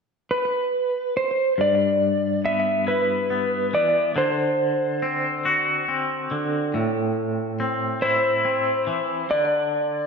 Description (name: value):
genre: rock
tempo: 47 BPM (dotted quarters)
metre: 6/8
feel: straight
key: G major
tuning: A4 = 444 Hz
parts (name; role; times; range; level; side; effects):
- clean lap steel guitar; melody; 0.3-10.1 s; B4 to E5; -22 LUFS; right 1 dB; slapback echo
- twangy electric guitar; arpeggios; 1.6-10.1 s; G2 to F#4; -23 LUFS; left 2 dB; tremolo, slapback echo
room: wet lush hall reverb, RT60 1.8 s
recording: big arena sound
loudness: -20 LUFS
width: side -5 dB against mid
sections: 0.0-1.6 A section; 1.6-10.1 B section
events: none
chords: 0.0 N.C.; 1.6 G6; 4.2 D7; 6.7 Am; 9.3 N.C.